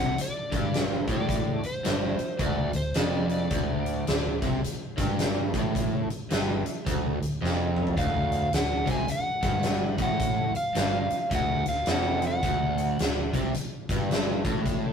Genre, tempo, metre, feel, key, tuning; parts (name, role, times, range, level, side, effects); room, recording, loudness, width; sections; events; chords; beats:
blues rock power trio and southern rock; 108 BPM; 4/4; swing 62% on 8ths; A4 = 439 Hz
overdriven slide guitar; melody; 0.0-4.4, 8.0-13.3 s; C5 to G#5; -30 LUFS; equal
crunchy overdriven guitar; riff; 0.0-14.9 s; D2 to C3; -29 LUFS; right 1 dB
vintage muted fingered electric bass; bass; 0.0-14.9 s; D1 to C2; -34 LUFS; equal
huge arena drum kit; drums; 0.2-14.8 s; hi-hat, kick drum, snare drum, toms; -28 LUFS; equal
light reverb; rough rehearsal-room recording; -24 LUFS; side -7 dB against mid
0.0-14.9 A section
drum fill 7.4-8.0
0.0 D
0.18 0.73 | 1.29 1.85 2.41 2.96 | 3.52 4.08 4.64 5.19 | 5.75 6.31 6.87 7.42 | 7.98 8.54 9.09 9.65 | 10.21 10.76 11.32 11.88 | 12.43 12.99 13.54 14.10 | 14.65